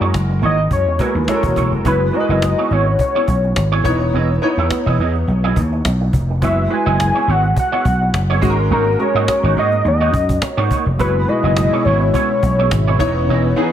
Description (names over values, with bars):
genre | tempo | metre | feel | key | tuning
polished 1980s jazz-funk pop | 105 BPM | 4/4 | swing 54% on 16ths | unclear | A4 = 441 Hz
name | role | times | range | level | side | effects
clear concert grand piano | accompaniment | 0.0-13.7 s | G#3 to C#5 | -22 LUFS | equal | ensemble chorus
electric guitar with an envelope filter | riff | 0.0-13.6 s | A#3 to E5 | -23 LUFS | right 7 dB | ensemble chorus
vintage slap bass | bass | 0.0-13.5 s | D#1 to G#2 | -17 LUFS | equal | none
cajon | drums | 0.0-13.6 s | none | -22 LUFS | equal | none
fat analog lead | melody | 0.5-13.0 s | A#4 to G#5 | -19 LUFS | left 1 dB | chorus
chorused pulse-width pad | sustained chords | 11.0-13.7 s | B2 to E4 | -23 LUFS | equal | none
room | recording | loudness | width
small room reverb | none | -14 LUFS | side -10 dB against mid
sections
0.0-1.8 A section; 1.8-13.7 B section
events
none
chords
0.0 F#9; 1.8 F#9sus4; 3.8 C#m9/E; 6.4 F#9sus4; 8.4 G#9sus4; 11.0 F#9sus4; 13.0 C#m9/E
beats
0.14 0.71 1.28 | 1.85 2.42 2.99 3.56 | 4.13 4.71 5.28 5.85 | 6.42 6.99 7.56 8.14 | 8.71 9.28 9.85 10.43 | 11.00 11.57 12.14 12.71 | 13.29